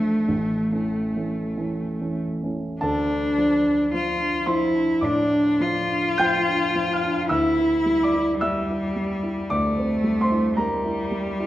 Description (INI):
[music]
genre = classical, romantic duo for cello and grand piano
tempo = 46-56 BPM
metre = 4/4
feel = rubato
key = D minor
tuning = A4 = 439 Hz
[part]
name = clear cello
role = melody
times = 0.0-11.5 s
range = G3 to F4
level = -22 LUFS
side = left 1 dB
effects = none
[part]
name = dark grand piano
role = accompaniment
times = 0.0-11.5 s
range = A1 to G6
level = -25 LUFS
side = right 1 dB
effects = none
[sound]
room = wet recital hall reverb, RT60 1.4 s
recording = dark, warm production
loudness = -20 LUFS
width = side -14 dB against mid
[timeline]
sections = 0.0-2.8 A section; 2.8-11.5 B section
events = none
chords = 0.3 A; 2.8 Dm; 7.3 C/D